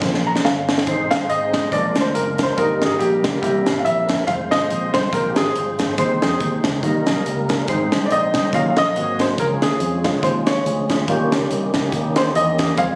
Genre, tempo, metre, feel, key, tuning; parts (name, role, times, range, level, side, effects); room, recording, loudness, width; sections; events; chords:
uptempo gospel; 141 BPM; 4/4; swing 56% on 8ths; Ab major; A4 = 439 Hz
percussive tonewheel organ; sustained chords; 0.0-13.0 s; Eb3 to C5; -28 LUFS; equal; slow rotary speaker, overdrive, chorus vibrato
fingered electric bass; bass; 0.0-13.0 s; F1 to F2; -28 LUFS; equal
crisp fusion drum kit; drums; 0.0-12.9 s; hi-hat, kick drum, snare drum; -24 LUFS; equal
warm baby grand piano; accompaniment; 0.3-13.0 s; Gb3 to Bb5; -23 LUFS; equal
clear French horn section; sustained chords; 0.9-13.0 s; Eb3 to Ab4; -32 LUFS; equal
light reverb, small room ambience; recorded on a phone in the room, studio reverb; -19 LUFS; mono
0.9-13.0 A section
drum fill 0.0-0.9; grand piano fill 0.0-0.9; grand piano solo 0.9-13.0
0.0 Ab69 (rootless); 0.9 Ab; 1.7 Bb7; 2.6 Eb/G; 3.4 C7; 4.3 Fm; 6.0 Ab/Eb; 6.8 Eb; 7.7 Ab; 8.5 Ebm7; 9.0 Ab9; 9.4 Db; 11.1 Eb7